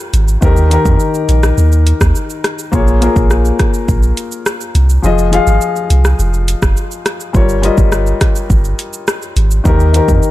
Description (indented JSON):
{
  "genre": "dancehall",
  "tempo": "104 BPM",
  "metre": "4/4",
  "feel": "straight",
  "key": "unclear",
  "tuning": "A4 = 441 Hz",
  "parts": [
    { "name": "dark baby grand piano", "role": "accompaniment", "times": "0.0-10.3 s", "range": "Eb3 to F5", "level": "-16 LUFS", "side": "left 4 dB", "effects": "none" },
    { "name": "punchy sub bass", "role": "bass", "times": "0.1-10.2 s", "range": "F1 to F2", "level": "-12 LUFS", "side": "equal", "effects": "none" },
    { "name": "afro-pop drum kit", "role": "drums", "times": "0.1-10.3 s", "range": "hi-hat, kick drum, rim click, shaker", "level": "-15 LUFS", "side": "equal", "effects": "none" }
  ],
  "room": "digital ambience",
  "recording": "dark, warm production",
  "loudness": "-10 LUFS",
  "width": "side -15 dB against mid",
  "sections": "0.0-10.3 A section",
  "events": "kick muted 5.0-6.2",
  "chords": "0.4 Eb; 2.7 Bbm7; 5.0 Fm7; 7.3 Gm7; 9.7 Eb",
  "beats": "| 0.42 1.00 1.58 2.15 | 2.73 3.31 3.88 4.46 | 5.04 5.62 6.19 6.77 | 7.35 7.92 8.50 9.08 | 9.65 10.23"
}